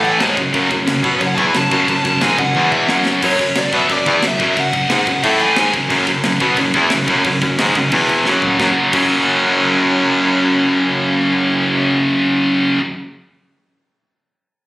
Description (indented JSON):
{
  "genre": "heavy metal",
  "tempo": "179 BPM",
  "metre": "4/4",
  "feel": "straight",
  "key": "F# minor",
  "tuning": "A4 = 439 Hz",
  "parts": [
    { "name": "dark smooth lead guitar", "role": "melody", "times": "0.0-5.7 s", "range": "C#5 to C#6", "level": "-20 LUFS", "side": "equal", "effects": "overdrive, digital delay" },
    { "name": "heavy high-gain guitar", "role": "riff", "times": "0.0-12.8 s", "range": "E2 to E4", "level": "-17 LUFS", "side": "left 2 dB", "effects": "distortion" },
    { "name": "high-gain distorted guitar", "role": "riff", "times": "0.0-12.8 s", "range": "E2 to E4", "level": "-23 LUFS", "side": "equal", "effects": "none" },
    { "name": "sludgy distorted guitar", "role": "riff", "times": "0.0-3.2, 5.9-12.8 s", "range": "E2 to E4", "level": "-19 LUFS", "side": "right 2 dB", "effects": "overdrive" },
    { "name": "clear baritone saxophone", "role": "bass", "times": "0.0-12.0 s", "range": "E2 to B2", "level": "-19 LUFS", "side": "equal", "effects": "none" },
    { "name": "tight metal drum kit", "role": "drums", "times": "0.0-9.0 s", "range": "crash cymbal, kick drum, snare drum, toms", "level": "-23 LUFS", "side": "equal", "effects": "none" }
  ],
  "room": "little or no reverb",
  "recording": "recorded on a phone in the room, studio reverb, compression",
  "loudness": "-12 LUFS",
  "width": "side -19 dB against mid",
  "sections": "0.0-3.2 A section; 3.2-8.6 B section; 8.6-11.3 C section",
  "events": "lead electric guitar solo 0.0-3.2; drum fill 2.6-3.2, 8.3-8.6",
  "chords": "0.2 F#m; 2.6 E5; 2.9 F#5; 5.2 A5; 5.6 F#5; 7.9 E5; 8.3 F#5",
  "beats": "0.21 | 0.54 0.88 1.21 1.55 | 1.88 2.22 2.55 2.89 | 3.22 3.56 3.89 4.23 | 4.56 4.90 5.23 5.57 | 5.91 6.24 6.58 6.91 | 7.25 7.59 7.92 8.26 | 8.60 8.93 9.27 9.60 | 9.94 10.28 10.61 10.95"
}